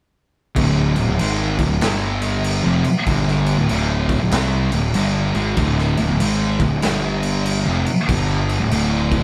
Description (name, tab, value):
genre	stoner and doom metal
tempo	96 BPM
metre	4/4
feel	swing 63% on 8ths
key	D minor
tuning	A4 = 440 Hz
part	thick fuzz guitar	riff	0.6-9.2 s	D2 to C4	-26 LUFS	equal	distortion
part	thick fuzz guitar	riff	0.6-9.2 s	D2 to C4	-23 LUFS	equal	distortion
part	fuzz picked electric bass	bass	0.6-9.2 s	D1 to C2	-24 LUFS	equal	overdrive
part	raw garage drum kit	drums	0.6-9.2 s	crash cymbal, kick drum, snare drum	-26 LUFS	equal	none
room	light reverb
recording	band playing live in one room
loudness	-19 LUFS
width	mono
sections	0.6-9.2 A section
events	none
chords	0.6 D5; 1.8 G5; 2.6 Dm; 6.8 G5; 7.6 Dm